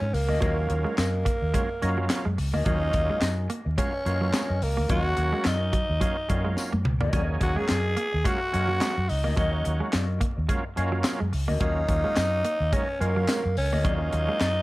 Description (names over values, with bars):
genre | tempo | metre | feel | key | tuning
funk | 107 BPM | 4/4 | swing 56% on 16ths | Eb minor | A4 = 440 Hz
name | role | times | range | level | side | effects
growling tenor saxophone | melody | 0.0-14.6 s | Bb3 to Ab4 | -28 LUFS | equal | slapback echo, plate reverb
mellow electric guitar | accompaniment | 0.0-14.6 s | Db4 to F5 | -36 LUFS | left 4 dB | wah, spring reverb, plate reverb
semi-hollow electric guitar | riff | 0.0-14.4 s | Gb3 to Bb3 | -35 LUFS | right 3 dB | spring reverb
vintage muted fingered electric bass | bass | 0.0-14.6 s | Db2 to Ab2 | -26 LUFS | equal | none
crisp fusion drum kit | drums | 0.1-14.6 s | handclaps, hi-hat, kick drum, snare drum, toms | -28 LUFS | equal | none
overdriven tonewheel organ | stabs | 0.4-14.4 s | F3 to Ab4 | -33 LUFS | right 2 dB | chorus vibrato, plate reverb
tambourine | percussion | 1.0-14.6 s | none | -41 LUFS | left 3 dB | none
room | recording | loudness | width
light reverb | vinyl crackle | -23 LUFS | side -19 dB against mid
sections
0.0-14.6 A section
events
drum fill 6.6-7.1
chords
0.0 Ebm7